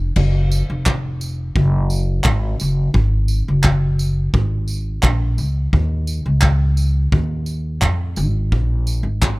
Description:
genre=acoustic pop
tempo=86 BPM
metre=4/4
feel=straight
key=unclear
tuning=A4 = 439 Hz
part: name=upright bass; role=bass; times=0.0-9.4 s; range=F1 to F2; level=-17 LUFS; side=equal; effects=none
part: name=loose indie drum kit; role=drums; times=0.2-9.4 s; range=crash cymbal, handclaps, kick drum, tambourine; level=-20 LUFS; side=equal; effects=none
room=little or no reverb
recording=rough home demo mix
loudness=-16 LUFS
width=side -23 dB against mid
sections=0.2-9.4 A section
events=none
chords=none

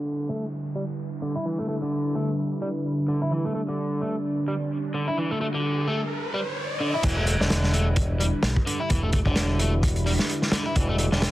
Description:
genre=breakbeat, breaks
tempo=129 BPM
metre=4/4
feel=swing 58% on 16ths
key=E minor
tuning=A4 = 438 Hz
part: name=lush unison pad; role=sustained chords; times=0.0-11.3 s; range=D3 to B4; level=-29 LUFS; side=equal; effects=chorus, sidechain pumping
part: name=overdriven electric guitar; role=riff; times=0.0-11.3 s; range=D3 to E4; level=-28 LUFS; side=equal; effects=low-pass filter, dub echo
part: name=downlifter and riser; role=sound effects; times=0.0-7.0 s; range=none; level=-36 LUFS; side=equal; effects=none
part: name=fingered electric bass with an envelope filter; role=bass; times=7.0-11.3 s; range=E1 to B1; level=-25 LUFS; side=equal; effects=tube saturation
part: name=crunchy breakbeat drum kit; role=drums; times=7.0-11.3 s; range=crash cymbal, hi-hat, kick drum, snare drum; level=-24 LUFS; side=equal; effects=none
room=moderate studio reverb, RT60 0.6 s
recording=dense, heavily limited modern master, vinyl crackle, low-pass filter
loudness=-23 LUFS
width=side -16 dB against mid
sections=0.0-7.0 A section; 7.0-11.3 B section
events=filter sweep on overdriven electric guitar 0.0-7.0; filter sweep on analog synth pad 0.0-7.0; filter sweep 0.0-7.0; riser 4.4-7.0; drop 7.0-11.3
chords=0.0 Em7

